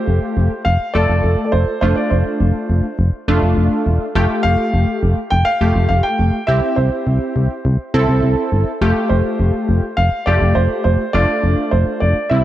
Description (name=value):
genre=synth-pop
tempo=103 BPM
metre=4/4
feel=straight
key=F major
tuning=A4 = 440 Hz
part: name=warm baby grand piano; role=melody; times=0.0-12.4 s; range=C5 to G5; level=-20 LUFS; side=right 1 dB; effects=none
part: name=funky polysynth comp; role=accompaniment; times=0.0-12.4 s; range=G3 to A4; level=-19 LUFS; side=equal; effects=chorus
part: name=solid FM bass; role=bass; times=0.1-12.4 s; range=E1 to C2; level=-15 LUFS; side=equal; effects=none
room=light reverb, studio reverb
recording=dark, warm production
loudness=-14 LUFS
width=side -13 dB against mid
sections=0.0-12.4 A section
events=none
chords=0.0 Fadd9; 1.8 Dm/F; 4.2 Fadd9; 6.5 C; 8.8 Fadd9; 11.1 Dm/F